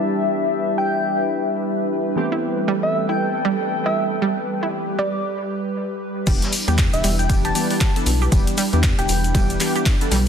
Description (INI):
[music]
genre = deep house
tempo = 117 BPM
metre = 4/4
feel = swing 60% on 16ths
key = unclear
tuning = A4 = 440 Hz
[part]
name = airy breathy pad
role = sustained chords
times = 0.0-10.3 s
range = G3 to B4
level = -26 LUFS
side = right 1 dB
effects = chorus, sidechain pumping
[part]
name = warm analog keys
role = stabs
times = 0.0-10.2 s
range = E3 to A4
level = -26 LUFS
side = equal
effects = chorus, sidechain pumping, dub echo
[part]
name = warbly tape-like pad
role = texture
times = 0.0-5.2 s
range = D4 to B5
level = -24 LUFS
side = left 4 dB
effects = chorus, built-in reverb, sidechain pumping
[part]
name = soft struck synth lead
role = melody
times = 0.8-9.5 s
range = D5 to A5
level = -26 LUFS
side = equal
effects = chorus, dub echo
[part]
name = analog pluck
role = arpeggios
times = 2.3-10.2 s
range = G3 to G4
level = -27 LUFS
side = right 4 dB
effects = chorus, sidechain pumping, dub echo
[part]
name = rubbery square bass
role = bass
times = 6.3-10.3 s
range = E1 to E2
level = -21 LUFS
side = equal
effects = sidechain pumping
[part]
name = electronic kick drum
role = drums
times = 6.3-10.0 s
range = none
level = -19 LUFS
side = equal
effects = none
[part]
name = jazz brush drum kit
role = drums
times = 6.3-10.3 s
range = hi-hat, snare drum, tambourine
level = -34 LUFS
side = equal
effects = none
[part]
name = punchy analog drum machine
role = drums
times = 6.3-10.2 s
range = crash cymbal, handclaps, hi-hat, ride cymbal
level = -26 LUFS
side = equal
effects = low-pass filter on hats, low-pass filter on snare, low-pass filter on cymbals
[part]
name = tube shaker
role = percussion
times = 6.3-10.3 s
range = none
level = -32 LUFS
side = left 6 dB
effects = none
[sound]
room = moderate lush hall reverb, RT60 1.9 s, small room ambience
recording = dense, heavily limited modern master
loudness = -18 LUFS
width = side -7 dB against mid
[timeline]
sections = 0.0-6.3 A section; 6.3-10.3 B section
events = filter sweep on analog synth pad 0.0-6.3; break 5.2-6.3; drop 6.3-10.3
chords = 0.0 Em7; 2.2 Am9; 6.3 Em7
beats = | 0.12 0.63 1.14 1.65 | 2.17 2.68 3.19 3.71 | 4.22 4.73 5.24 5.76 | 6.27 6.78 7.29 7.81 | 8.32 8.83 9.35 9.86